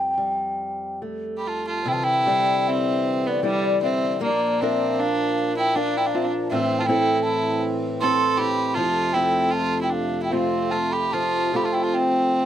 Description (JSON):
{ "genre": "celtic folk, Celtic slow air", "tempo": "78 BPM", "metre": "3/4", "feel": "uneven beats, rubato", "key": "unclear", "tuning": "A4 = 440 Hz", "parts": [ { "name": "mellow hollow baroque flute", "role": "melody", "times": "0.0-12.5 s", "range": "D5 to C6", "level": "-24 LUFS", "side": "right 1 dB", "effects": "none" }, { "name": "fingerpicked old ladder-braced acoustic guitar", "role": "accompaniment", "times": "0.0-12.5 s", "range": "F2 to Bb4", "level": "-25 LUFS", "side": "left 2 dB", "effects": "none" }, { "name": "rich fiddle", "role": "second line", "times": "1.4-12.5 s", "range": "G3 to A4", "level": "-26 LUFS", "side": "right 2 dB", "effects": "none" }, { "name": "hand-pumped harmonium", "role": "sustained chords", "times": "1.8-12.5 s", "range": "F2 to D4", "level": "-31 LUFS", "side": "left 2 dB", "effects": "none" } ], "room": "light reverb", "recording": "none", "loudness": "-20 LUFS", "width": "side -10 dB against mid", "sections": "0.0-1.8 A section; 1.8-12.5 B section", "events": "none", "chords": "0.0 Fadd9; 1.8 Cadd9; 4.2 Bb; 6.5 Am; 8.8 F", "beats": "0.16 1.00 | 1.85 2.65 3.44 | 4.22 4.99 5.75 | 6.50 7.25 8.01 | 8.77 9.52 10.31 | 11.12 11.93" }